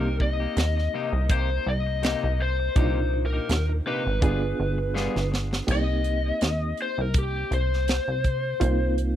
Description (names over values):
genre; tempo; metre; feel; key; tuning
straight-eighth soul blues; 82 BPM; 4/4; swing 54% on 16ths; C minor; A4 = 439 Hz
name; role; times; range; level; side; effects
lead guitar through a small cranked amp; melody; 0.0-8.9 s; G4 to Eb5; -29 LUFS; left 3 dB; overdrive
barky reed electric piano; accompaniment; 0.0-9.2 s; Bb2 to Ab4; -32 LUFS; right 4 dB; overdrive, fast tremolo
clean electric guitar; stabs; 0.0-5.6 s; C3 to Ab4; -34 LUFS; left 5 dB; spring reverb
plucky analog bass; bass; 0.0-9.2 s; G1 to Eb2; -26 LUFS; equal; none
tight funk drum kit; drums; 0.2-9.2 s; crash cymbal, hi-hat, kick drum, snare drum; -25 LUFS; right 1 dB; none
room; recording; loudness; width
little or no reverb; dry, close 1970s-style studio recording; -22 LUFS; side -11 dB against mid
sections
0.0-5.7 A section; 5.7-9.2 B section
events
drum fill 5.0-5.7; lead electric guitar solo 5.7-9.2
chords
0.0 Cm7; 4.2 G7b9; 5.7 Cm7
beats
0.57 1.30 2.03 | 2.76 3.49 4.22 4.95 | 5.68 6.42 7.14 7.88 | 8.61